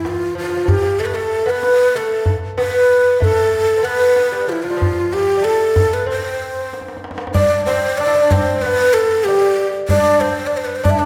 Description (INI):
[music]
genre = Persian modal ensemble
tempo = 94 BPM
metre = 4/4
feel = straight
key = C dastgah mahur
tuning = A4 = 442 Hz
[part]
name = breathy mellow ney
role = melody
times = 0.0-11.1 s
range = E4 to E5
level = -18 LUFS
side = equal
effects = none
[part]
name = lute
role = second line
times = 0.0-11.1 s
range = E3 to E4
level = -23 LUFS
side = equal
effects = none
[part]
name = tombak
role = percussion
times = 0.0-11.0 s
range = none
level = -24 LUFS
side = equal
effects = none
[part]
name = riq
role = percussion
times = 7.3-11.0 s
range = none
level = -31 LUFS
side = equal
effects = none
[sound]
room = moderate concert hall reverb, RT60 1.8 s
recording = recorded in a church or concert hall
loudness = -16 LUFS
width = mono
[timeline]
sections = 0.0-11.1 A section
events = drum fill 6.7-7.3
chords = none